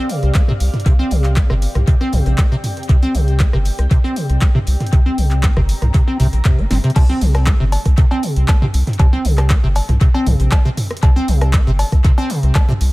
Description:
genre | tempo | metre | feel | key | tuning
acid house | 118 BPM | 4/4 | straight | unclear | A4 = 441 Hz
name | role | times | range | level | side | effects
acid bass, square | riff | 0.0-12.7 s | C3 to C4 | -20 LUFS | equal | lush chorus, dub echo
granular cloud pad | texture | 0.0-7.0 s | C4 to Bb5 | -31 LUFS | left 1 dB | built-in reverb, sidechain pumping
deep reggae drum kit | drums | 0.1-12.9 s | hi-hat, snare drum | -40 LUFS | left 3 dB | none
punchy analog drum machine | drums | 0.1-12.9 s | cowbell, crash cymbal, handclaps, hi-hat, rim click, snare drum, toms | -23 LUFS | equal | overdrive, tape echo
round analog bass | bass | 0.2-12.9 s | G1 to F2 | -16 LUFS | equal | sidechain pumping
electronic kick drum | drums | 0.4-12.7 s | none | -13 LUFS | equal | overdrive
room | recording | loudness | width
digital ambience | echo-heavy mix | -12 LUFS | side -20 dB against mid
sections
0.0-7.0 A section; 7.0-12.9 B section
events
drum fill 6.7; drop 7.0-12.9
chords
0.0 C5; 7.0 N.C.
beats
0.35 | 0.86 1.37 1.88 2.38 | 2.89 3.40 3.91 4.42 | 4.93 5.43 5.94 6.45 | 6.96 7.47 7.98 8.49 | 8.99 9.50 10.01 10.52 | 11.03 11.54 12.05 12.55

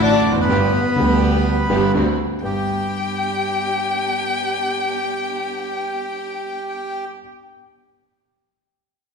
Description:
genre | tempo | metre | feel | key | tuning
tango | 124 BPM | 4/4 | rubato | G major | A4 = 439 Hz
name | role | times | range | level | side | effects
bandoneon | melody | 0.0-7.0 s | B3 to D5 | -24 LUFS | right 1 dB | none
warm violin | second line | 0.0-7.0 s | B3 to G5 | -24 LUFS | left 3 dB | none
warm concert grand piano | accompaniment | 0.0-7.2 s | G1 to G4 | -21 LUFS | equal | none
dark symphonic string section | stabs | 0.0-7.0 s | B3 to G4 | -29 LUFS | right 2 dB | none
clear double bass | bass | 0.0-2.6 s | F1 to D2 | -24 LUFS | right 2 dB | none
room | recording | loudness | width
wet scoring stage reverb, RT60 1.7 s | recorded in a church or concert hall | -18 LUFS | side -5 dB against mid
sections
0.0-2.4 A section; 2.4-6.3 B section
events
none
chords
0.5 G; 1.9 D7; 2.4 G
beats
0.02 | 0.50 0.98 1.46 1.95 | 2.44 2.92 3.40 3.89 | 4.37 4.84 5.32 5.80

